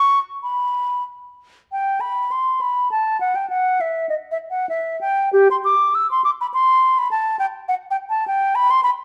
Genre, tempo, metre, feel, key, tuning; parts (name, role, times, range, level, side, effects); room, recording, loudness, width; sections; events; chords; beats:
classical, baroque-style fantasia for unaccompanied flute; 101 BPM; 3/4; uneven beats, rubato; A4 = 441 Hz
mellow concert flute; solo; 0.0-8.9 s; G4 to E6; -19 LUFS; equal
wet stone room reverb, RT60 1.2 s; dark, warm production; -20 LUFS; mono
0.0-1.7 A section; 1.7-9.0 A section
0.43 1.07 | 1.72 2.31 2.91 | 3.50 4.10 4.69 | 5.32 5.94 6.54 | 7.11 7.69 8.28 | 8.86